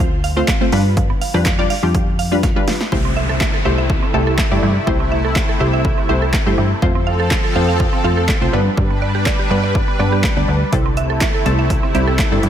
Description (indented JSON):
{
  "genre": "dance-pop",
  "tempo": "123 BPM",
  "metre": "4/4",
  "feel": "straight",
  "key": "C major",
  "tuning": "A4 = 439 Hz",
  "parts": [
    { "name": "punchy chord stab", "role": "accompaniment", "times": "0.0-12.5 s", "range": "G3 to D5", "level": "-21 LUFS", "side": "left 1 dB", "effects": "chorus, sidechain pumping" },
    { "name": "mallet-like synth pluck", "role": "arpeggios", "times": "0.0-12.5 s", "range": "D3 to F5", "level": "-25 LUFS", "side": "right 7 dB", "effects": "chorus, sidechain pumping, diffuse ambient delay" },
    { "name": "plucky analog bass", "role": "bass", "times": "0.0-12.5 s", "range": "C2 to G2", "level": "-19 LUFS", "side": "equal", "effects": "sidechain pumping" },
    { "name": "punchy analog drum machine", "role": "drums", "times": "0.0-12.5 s", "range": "handclaps, hi-hat, kick drum, snare drum", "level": "-18 LUFS", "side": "equal", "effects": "overdrive" },
    { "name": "supersaw pad", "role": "sustained chords", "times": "2.9-12.5 s", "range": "C3 to B4", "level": "-22 LUFS", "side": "right 1 dB", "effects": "ensemble chorus, sidechain pumping" },
    { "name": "downlifter", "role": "sound effects", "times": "2.9-6.8 s", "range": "none", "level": "-28 LUFS", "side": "equal", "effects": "none" }
  ],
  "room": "light reverb, digital ambience",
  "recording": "none",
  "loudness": "-14 LUFS",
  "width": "side -10 dB against mid",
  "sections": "0.0-2.9 A section; 2.9-12.5 B section",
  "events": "drum fill 2.4-2.9",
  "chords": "0.0 F; 0.7 G7; 2.9 C6; 6.8 F; 8.5 G; 10.7 C6"
}